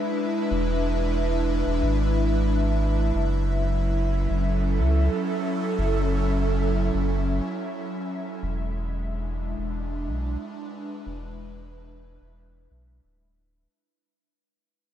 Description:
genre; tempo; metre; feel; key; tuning
ambient dub; 91 BPM; 4/4; straight; unclear; A4 = 440 Hz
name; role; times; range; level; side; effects
airy breathy pad; sustained chords; 0.0-13.7 s; F#3 to E5; -26 LUFS; right 1 dB; chorus
warm sub bass; bass; 0.5-13.7 s; D1 to C#2; -25 LUFS; equal; none
room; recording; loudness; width
light reverb; dark, warm production; -23 LUFS; side -10 dB against mid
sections
0.0-13.7 A section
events
fade-out 6.7-13.7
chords
0.0 E7; 3.2 F#m7; 8.4 E7

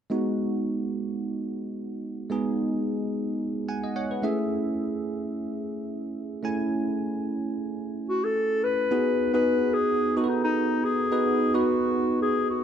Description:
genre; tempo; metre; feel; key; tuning
amapiano; 109 BPM; 4/4; swing 55% on 16ths; unclear; A4 = 440 Hz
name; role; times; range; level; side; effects
barky tine electric piano; accompaniment; 0.1-12.6 s; G#3 to G#5; -26 LUFS; right 2 dB; analog chorus
dark clarinet; melody; 8.1-12.6 s; D#4 to B4; -24 LUFS; left 2 dB; ping-pong delay
room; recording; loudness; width
moderate lush hall reverb, RT60 2.5 s; none; -24 LUFS; side -8 dB against mid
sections
0.1-8.9 A section; 8.9-12.6 B section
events
tine electric piano fill 3.4-4.5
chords
0.1 G#m7; 4.2 Amaj7; 8.9 G#m7

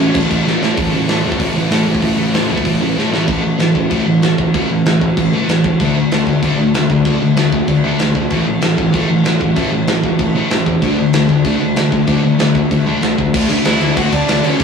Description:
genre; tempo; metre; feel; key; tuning
punk rock; 191 BPM; 4/4; straight; unclear; A4 = 439 Hz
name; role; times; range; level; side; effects
bluesy overdriven lead guitar; melody; 0.0-0.1, 13.5-14.6 s; C#4 to F#5; -18 LUFS; right 2 dB; distortion
sludgy distorted guitar; riff; 0.0-14.6 s; A2 to D4; -16 LUFS; left 1 dB; overdrive
fuzz picked electric bass; bass; 0.0-14.6 s; E1 to D3; -19 LUFS; left 1 dB; overdrive
big rock drum kit; drums; 0.1-14.6 s; crash cymbal, hi-hat, kick drum, snare drum; -18 LUFS; equal; none
room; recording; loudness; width
light reverb; rough rehearsal-room recording, warm saturation; -12 LUFS; side -6 dB against mid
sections
0.8-3.3 A section; 3.3-13.3 B section; 13.3-14.6 C section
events
drum fill 0.5-0.8, 3.0-3.3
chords
0.0 A; 0.8 A5; 5.8 D5; 8.3 A5; 10.8 D5

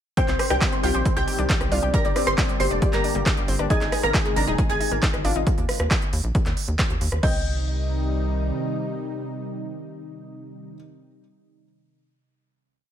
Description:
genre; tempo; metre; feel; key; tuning
uplifting trance; 136 BPM; 4/4; straight; C minor; A4 = 441 Hz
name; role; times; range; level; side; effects
wide unison pluck; melody; 0.2-10.7 s; G4 to C6; -28 LUFS; equal; ensemble chorus, sidechain pumping, dub echo
clear grand piano; second line; 0.2-10.7 s; Ab5 to C7; -32 LUFS; right 6 dB; sidechain pumping, tape echo
felt-muted upright piano; second line; 0.2-10.7 s; G3 to F5; -31 LUFS; left 2 dB; digital delay
lush unison pad; sustained chords; 0.2-10.7 s; C3 to G4; -31 LUFS; equal; chorus, sidechain pumping
analog pluck; arpeggios; 0.2-7.4 s; D3 to G4; -32 LUFS; left 4 dB; chorus, sidechain pumping, tape echo
big-room dance drum kit; drums; 0.2-7.3 s; crash cymbal, handclaps, hi-hat, rim click; -28 LUFS; right 1 dB; overdrive
electronic kick drum; drums; 0.2-7.3 s; none; -23 LUFS; equal; overdrive
tight sequencer bass; bass; 0.3-8.5 s; Eb1 to Eb2; -26 LUFS; equal; sidechain pumping
room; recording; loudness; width
light reverb; none; -20 LUFS; side -10 dB against mid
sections
0.2-7.2 drop; 7.2-10.8 final chord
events
drop 0.2-7.2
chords
0.2 Cm; 1.9 Gm; 3.7 Ab; 5.5 Eb5; 7.2 Cm

